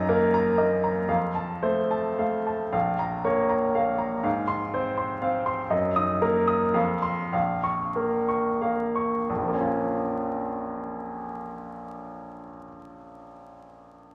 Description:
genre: classical, romantic character piece for solo piano.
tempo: 84-125 BPM.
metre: 3/4.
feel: rubato.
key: Bb minor.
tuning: A4 = 440 Hz.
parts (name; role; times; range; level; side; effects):
clear baby grand piano; solo; 0.0-14.1 s; Bb1 to Eb6; -27 LUFS; equal; none.
room: wet recital hall reverb, RT60 1.6 s.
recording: vinyl crackle.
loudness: -26 LUFS.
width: mono.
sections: 0.0-9.3 A section; 9.3-13.3 B section.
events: slowing down 5.0-9.3.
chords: 0.0 Ebm/Gb; 1.1 F; 2.7 Bbm; 4.2 Fm/Ab; 5.7 Ebm/Gb; 6.7 F5; 7.3 Bbm.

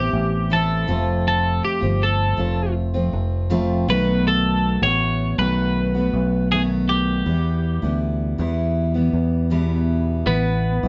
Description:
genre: acoustic pop.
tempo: 80 BPM.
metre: 4/4.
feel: straight.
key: A minor.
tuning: A4 = 440 Hz.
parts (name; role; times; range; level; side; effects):
twelve-string electric guitar; melody; 0.0-10.9 s; B3 to C#5; -25 LUFS; equal; none.
picked steel-string acoustic guitar; accompaniment; 0.0-10.9 s; E2 to F#4; -26 LUFS; equal; none.
fingered electric bass; bass; 0.0-10.9 s; F1 to E2; -23 LUFS; equal; none.
room: moderate studio reverb, RT60 0.6 s.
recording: band playing live in one room, nothing above 7.6 kHz.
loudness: -20 LUFS.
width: mono.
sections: 0.0-10.3 A section.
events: none.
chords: 0.0 Amadd9; 0.9 F; 3.9 B7; 7.3 Em; 10.3 Asus2.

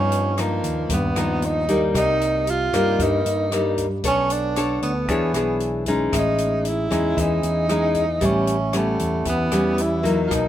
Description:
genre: bossa nova.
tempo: 115 BPM.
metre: 4/4.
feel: straight.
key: unclear.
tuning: A4 = 440 Hz.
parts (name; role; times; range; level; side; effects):
breathy tenor saxophone; melody; 0.0-10.5 s; A3 to F4; -23 LUFS; right 2 dB; none.
nylon-string guitar; accompaniment; 0.0-10.5 s; G2 to C#5; -22 LUFS; left 2 dB; none.
fingered electric bass; bass; 0.0-10.5 s; A1 to G2; -26 LUFS; equal; none.
open jazz drum kit; drums; 0.1-10.4 s; hi-hat, kick drum, rim click; -30 LUFS; left 1 dB; none.
room: little or no reverb.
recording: minimal, uncompressed stereo recording.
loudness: -19 LUFS.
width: side -11 dB against mid.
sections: 0.0-10.5 A section.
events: none.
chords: 0.0 G7alt; 1.9 Cm7; 4.0 Bm9; 5.1 E6; 6.1 Amaj7#11; 8.2 A9.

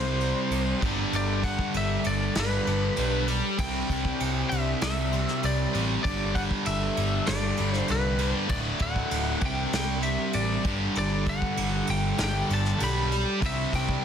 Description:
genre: hard rock.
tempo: 98 BPM.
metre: 4/4.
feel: straight.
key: unclear.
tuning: A4 = 440 Hz.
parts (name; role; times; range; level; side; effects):
lightly driven lead guitar; melody; 0.0-14.0 s; B4 to B5; -31 LUFS; left 2 dB; digital delay.
chorused pulse-width pad; sustained chords; 0.0-14.0 s; G3 to E5; -41 LUFS; equal; none.
high-gain distorted guitar; riff; 0.0-14.0 s; D2 to C4; -32 LUFS; equal; distortion.
overdriven electric guitar; riff; 0.0-14.0 s; D2 to C4; -30 LUFS; right 1 dB; none.
overdriven picked electric bass; bass; 0.0-13.9 s; D1 to C2; -30 LUFS; equal; none.
vintage brush drum kit; drums; 0.2-14.0 s; crash cymbal, kick drum, ride cymbal, snare drum; -32 LUFS; right 1 dB; none.
room: light reverb.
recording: dense, heavily limited modern master.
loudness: -24 LUFS.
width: side -8 dB against mid.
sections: 0.0-14.0 A section.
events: none.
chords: 0.0 C5; 0.8 G; 3.6 C; 6.0 G5; 8.5 D; 9.4 C5; 10.7 G; 13.4 C5.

